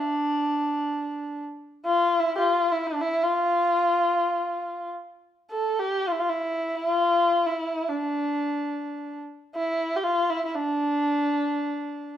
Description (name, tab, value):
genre	Persian modal ensemble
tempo	free time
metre	none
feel	none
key	D avaz esfahan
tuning	A4 = 438 Hz
part	warm kamancheh	solo	0.0-12.2 s	D4 to A4	-23 LUFS	equal	none
room	wet large studio reverb, RT60 1.1 s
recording	band playing live in one room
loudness	-23 LUFS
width	side -10 dB against mid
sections	0.0-12.2 A section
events	none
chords	none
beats	free time